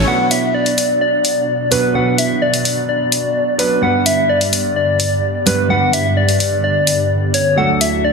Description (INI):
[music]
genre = EDM, festival progressive house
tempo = 128 BPM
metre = 4/4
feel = straight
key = B minor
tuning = A4 = 440 Hz
[part]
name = lush unison pad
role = sustained chords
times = 0.0-8.1 s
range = D2 to F#5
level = -22 LUFS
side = equal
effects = chorus
[part]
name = soft struck synth lead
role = melody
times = 0.1-8.1 s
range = B4 to F#5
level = -16 LUFS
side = left 2 dB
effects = chorus, ping-pong delay
[part]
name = clear concert grand piano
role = accompaniment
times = 0.1-8.1 s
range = G2 to B4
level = -20 LUFS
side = right 4 dB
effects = vintage 12-bit sampler grit
[part]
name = electronic hi-hat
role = drums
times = 0.3-7.9 s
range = none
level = -18 LUFS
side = left 1 dB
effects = none
[sound]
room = wet digital room reverb, RT60 1.0 s, digital ambience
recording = dense, heavily limited modern master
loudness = -13 LUFS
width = side -4 dB against mid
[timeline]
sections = 0.1-8.1 A section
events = filter sweep on analog synth pad 0.1-8.1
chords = 0.1 Bm; 3.8 G; 7.6 D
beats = | 0.07 0.54 1.01 1.48 | 1.95 2.42 2.89 3.36 | 3.83 4.29 4.76 5.23 | 5.70 6.17 6.64 7.11 | 7.58 8.04